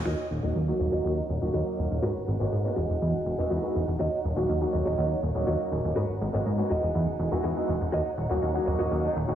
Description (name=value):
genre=house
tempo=122 BPM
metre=4/4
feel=straight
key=Eb phrygian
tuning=A4 = 440 Hz
part: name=warm studio violin section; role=sustained chords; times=0.0-9.3 s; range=Cb4 to Bb5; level=-36 LUFS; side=right 1 dB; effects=low-pass filter
part: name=plucky analog bass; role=bass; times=0.0-9.3 s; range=Eb1 to Ab2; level=-28 LUFS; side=equal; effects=low-pass filter
part: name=direct-recorded clean electric guitar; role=riff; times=0.1-9.1 s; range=Gb4 to F#5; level=-32 LUFS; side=equal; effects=analog chorus, low-pass filter
part: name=clear concert grand piano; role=accompaniment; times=0.4-9.3 s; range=Gb3 to Gb4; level=-31 LUFS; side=equal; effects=phaser, low-pass filter
part: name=brilliant horn section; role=melody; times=9.0-9.2 s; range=Eb3 to Eb4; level=-37 LUFS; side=right 1 dB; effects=none
room=light reverb, digital ambience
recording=heavily compressed radio sound, small room reverb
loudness=-25 LUFS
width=side -10 dB against mid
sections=0.1-9.3 A section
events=filter sweep 0.1-9.3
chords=0.1 Ebm7; 2.0 Abm11; 2.8 Emaj9; 4.0 Ebm7; 6.0 Abm11; 6.7 Emaj9; 7.9 Ebm7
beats=| 0.06 0.56 1.05 1.54 | 2.03 2.52 3.02 3.51 | 4.00 4.49 4.98 5.47 | 5.97 6.46 6.95 7.44 | 7.93 8.43 8.92